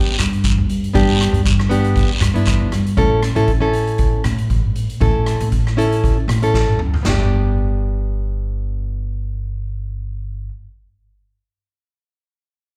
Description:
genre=calypso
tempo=118 BPM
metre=4/4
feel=swing 54% on 16ths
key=G major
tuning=A4 = 440 Hz
part: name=nylon-string guitar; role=accompaniment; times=0.0-10.5 s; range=B3 to A4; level=-23 LUFS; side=equal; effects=slapback echo
part: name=upright bass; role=bass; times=0.2-10.5 s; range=G1 to A2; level=-21 LUFS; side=equal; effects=none
part: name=street-band drum kit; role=drums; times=0.2-7.2 s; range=hi-hat, kick drum, rim click, snare drum, splash cymbal, toms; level=-22 LUFS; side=equal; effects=none
part: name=guiro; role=percussion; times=0.2-2.6 s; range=none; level=-27 LUFS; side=equal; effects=slapback echo
room=little or no reverb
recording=live gig heard through the venue's PA, club reverb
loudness=-18 LUFS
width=mono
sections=0.0-7.0 A section; 7.0-11.1 B section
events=drum fill 6.5-7.0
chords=0.0 G; 3.0 A; 7.0 G

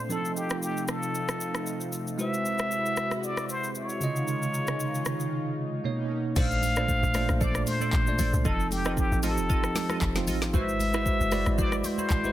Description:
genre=amapiano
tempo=115 BPM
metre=4/4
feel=swing 55% on 16ths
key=unclear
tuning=A4 = 440 Hz
part: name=trumpet with plunger mute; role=melody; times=0.0-12.3 s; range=G4 to F5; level=-31 LUFS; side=left 1 dB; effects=digital delay
part: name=bell-like tine electric piano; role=accompaniment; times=0.0-12.3 s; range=Bb2 to Eb5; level=-30 LUFS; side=right 2 dB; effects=fast stereo tremolo
part: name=warm analog pad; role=sustained chords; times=0.0-6.4 s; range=B2 to Gb4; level=-34 LUFS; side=equal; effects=chorus, sidechain pumping
part: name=afro-pop drum kit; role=drums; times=0.1-12.3 s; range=crash cymbal, handclaps, hi-hat, kick drum, rim click, shaker, snare drum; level=-31 LUFS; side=left 1 dB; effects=none
part: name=glassy wavetable pluck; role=stabs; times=6.4-12.3 s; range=E4 to Eb5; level=-37 LUFS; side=right 1 dB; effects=chorus, digital delay
part: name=deep log drum bass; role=bass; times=6.4-12.3 s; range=F1 to C2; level=-29 LUFS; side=left 1 dB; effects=none
part: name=congas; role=percussion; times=6.4-12.3 s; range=none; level=-38 LUFS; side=left 4 dB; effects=none
room=light reverb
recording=dense, heavily limited modern master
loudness=-25 LUFS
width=side -13 dB against mid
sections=0.0-6.4 A section; 6.4-12.3 B section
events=drop 6.4-12.3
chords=0.1 F7; 2.2 Ab7alt; 4.0 Dbmaj9; 5.8 Bmaj9; 6.4 Bbmaj9; 8.5 F7; 10.5 Ab7alt

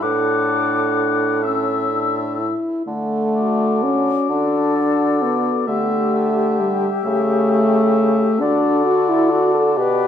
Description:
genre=classical, slow romantic movement for wind quintet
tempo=43 BPM (dotted quarters)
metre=6/8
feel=rubato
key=D major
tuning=A4 = 440 Hz
part: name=concert flute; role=melody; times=0.0-10.1 s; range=G4 to E6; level=-23 LUFS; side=left 9 dB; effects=none
part: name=warm oboe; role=second line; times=0.0-10.1 s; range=D5 to F#5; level=-24 LUFS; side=left 7 dB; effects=none
part: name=mellow clarinet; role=accompaniment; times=0.0-10.1 s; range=F#4 to B4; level=-26 LUFS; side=right 6 dB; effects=none
part: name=warm French horn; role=accompaniment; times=0.0-10.1 s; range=G3 to A4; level=-19 LUFS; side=left 1 dB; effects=none
part: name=warm bassoon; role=bass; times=0.0-10.1 s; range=A2 to D3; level=-23 LUFS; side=right 3 dB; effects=none
room=moderate recital hall reverb, RT60 1.4 s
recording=nothing above 10.4 kHz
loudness=-16 LUFS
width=side -9 dB against mid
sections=0.0-2.9 A section; 2.9-10.1 B section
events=none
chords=0.0 D/A; 1.4 A; 2.9 D; 5.7 Em7/D; 7.1 A7/C#; 8.4 D

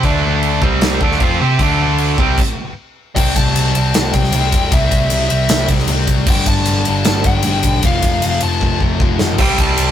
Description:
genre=hard rock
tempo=154 BPM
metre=4/4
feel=straight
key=unclear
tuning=A4 = 437 Hz
part: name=distorted electric guitar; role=riff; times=0.0-9.9 s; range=F2 to C5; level=-21 LUFS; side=left 5 dB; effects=overdrive
part: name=sludgy distorted guitar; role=riff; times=0.0-9.9 s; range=F2 to C5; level=-24 LUFS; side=right 1 dB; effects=overdrive
part: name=tight distorted guitar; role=riff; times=0.0-2.4, 9.4-9.9 s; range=C3 to C5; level=-17 LUFS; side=right 6 dB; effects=distortion
part: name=hollow-body short-scale picked electric bass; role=bass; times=0.0-9.9 s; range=F1 to C3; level=-18 LUFS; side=equal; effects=none
part: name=gated 80s drum kit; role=drums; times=0.0-9.9 s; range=crash cymbal, kick drum, ride cymbal, snare drum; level=-16 LUFS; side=equal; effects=none
part: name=smooth overdriven lead guitar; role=melody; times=3.2-9.9 s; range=E5 to A5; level=-20 LUFS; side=left 2 dB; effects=none
room=light reverb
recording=rough rehearsal-room recording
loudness=-12 LUFS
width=side -10 dB against mid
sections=0.0-3.2 A section; 3.2-9.9 B section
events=stop 2.4-3.2; drum fill 8.6-9.4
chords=0.0 D5; 0.6 C5; 1.0 D5; 2.2 C5; 2.6 N.C.; 3.2 C; 6.3 G; 7.8 F; 9.4 C5

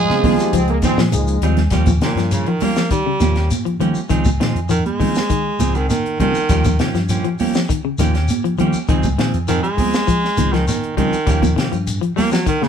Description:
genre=afrobeat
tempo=101 BPM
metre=4/4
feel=straight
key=Eb mixolydian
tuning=A4 = 436 Hz
part: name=growling trumpet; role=melody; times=0.0-1.1 s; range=Ab4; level=-22 LUFS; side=right 5 dB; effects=none
part: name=bright trombone section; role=second line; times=0.0-1.7 s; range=F3 to C4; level=-24 LUFS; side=left 2 dB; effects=none
part: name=trombone with metal mute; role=second line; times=0.0-1.1 s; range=Ab3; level=-24 LUFS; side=right 4 dB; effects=none
part: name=semi-hollow electric guitar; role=arpeggios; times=0.0-12.7 s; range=Db3 to G3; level=-22 LUFS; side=left 6 dB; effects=none
part: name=clean electric guitar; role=stabs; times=0.1-12.4 s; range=F3 to Ab4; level=-24 LUFS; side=right 4 dB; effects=spring reverb
part: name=fingered electric bass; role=bass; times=0.1-12.0 s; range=Db2 to Eb3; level=-20 LUFS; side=equal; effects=none
part: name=compact cocktail drum kit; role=drums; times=0.1-12.7 s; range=hi-hat, kick drum, snare drum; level=-22 LUFS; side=equal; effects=none
part: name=congas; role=percussion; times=0.1-12.7 s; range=none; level=-22 LUFS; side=right 5 dB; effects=none
part: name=shekere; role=percussion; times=0.2-12.6 s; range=none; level=-27 LUFS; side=left 3 dB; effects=none
part: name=tine electric piano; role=accompaniment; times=0.4-1.4 s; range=F3 to Ab4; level=-24 LUFS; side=left 3 dB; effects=medium tremolo
part: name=clear baritone saxophone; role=melody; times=2.0-12.7 s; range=Bb2 to Bb3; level=-20 LUFS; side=right 2 dB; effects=none
room=light reverb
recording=band playing live in one room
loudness=-15 LUFS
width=side -8 dB against mid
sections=0.0-1.7 A section; 1.7-12.7 B section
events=drum fill 0.8-1.7; baritone saxophone solo 1.7-12.7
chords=0.0 Dbmaj9; 1.7 Eb9; 4.1 Dbmaj9; 6.5 Eb9; 8.9 Dbmaj9; 11.3 Eb9

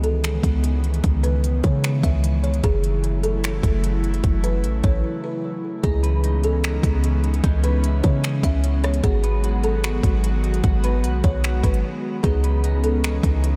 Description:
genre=hip hop, atmospheric cloud-rap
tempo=150 BPM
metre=4/4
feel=half-time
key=C# minor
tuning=A4 = 440 Hz
part: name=buzzing kalimba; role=melody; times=0.0-13.0 s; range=G#4 to E5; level=-31 LUFS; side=equal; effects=delay
part: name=airy breathy pad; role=sustained chords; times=0.0-13.6 s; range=C#3 to F#4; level=-29 LUFS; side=equal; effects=chorus, sidechain pumping
part: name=clean 808-style bass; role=bass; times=0.0-13.6 s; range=F#1 to C#3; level=-23 LUFS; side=equal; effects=none
part: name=trap drum kit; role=drums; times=0.0-13.5 s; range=finger snaps, hi-hat, kick drum, rim click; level=-26 LUFS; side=equal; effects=none
part: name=electric guitar at the edge of break-up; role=arpeggios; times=5.8-13.6 s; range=C#4 to B4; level=-36 LUFS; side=equal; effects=ensemble chorus, delay
room=light reverb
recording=none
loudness=-21 LUFS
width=mono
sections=0.0-5.8 A section; 5.8-13.6 B section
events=break 5.0-5.8, 11.8-12.2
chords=0.0 C#m9; 2.6 F#m7; 5.8 C#m9; 9.0 G#m7; 12.2 C#m9

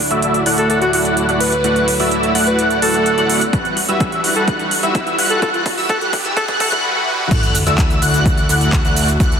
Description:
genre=EDM, festival progressive house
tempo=127 BPM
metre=4/4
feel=straight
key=D major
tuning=A4 = 440 Hz
part: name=rich studio string section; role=sustained chords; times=0.0-9.4 s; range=D2 to F#4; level=-26 LUFS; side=equal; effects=sidechain pumping
part: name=riser and sub drop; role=sound effects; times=1.6-9.2 s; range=none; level=-27 LUFS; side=equal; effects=none
part: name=wide unison lead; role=arpeggios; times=0.1-9.4 s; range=E6 to F#6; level=-20 LUFS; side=equal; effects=ensemble chorus, sidechain pumping, digital delay
part: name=dense compressed supersaw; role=riff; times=0.1-9.4 s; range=G3 to F#5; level=-19 LUFS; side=equal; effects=sidechain pumping, low-pass filter, digital delay
part: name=big-room dance drum kit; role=drums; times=0.1-9.4 s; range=crash cymbal, handclaps, hi-hat, shaker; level=-22 LUFS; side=right 3 dB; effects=none
part: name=clear alto saxophone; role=melody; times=0.6-6.7 s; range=F#4 to B4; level=-21 LUFS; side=equal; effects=digital delay
part: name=electronic kick drum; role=drums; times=3.5-9.3 s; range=none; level=-18 LUFS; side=equal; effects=overdrive
part: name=fat analog bass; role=bass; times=7.3-9.4 s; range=D2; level=-19 LUFS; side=equal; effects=sidechain pumping
room=moderate lush hall reverb, RT60 2.0 s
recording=dense, heavily limited modern master, high-pass filter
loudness=-13 LUFS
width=side -7 dB against mid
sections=0.0-7.3 A section; 7.3-9.4 B section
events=build-up 0.0-7.3; filter sweep on supersaw synth 0.0-7.3; filter sweep on analog synth lead 0.0-7.3; filter sweep 0.0-7.3; riser 1.6-6.8; drum fill 3.5-6.8; drop 7.3-9.4; impact 7.3-9.2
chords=0.0 Dadd9; 3.5 Emadd9; 7.3 Dadd9

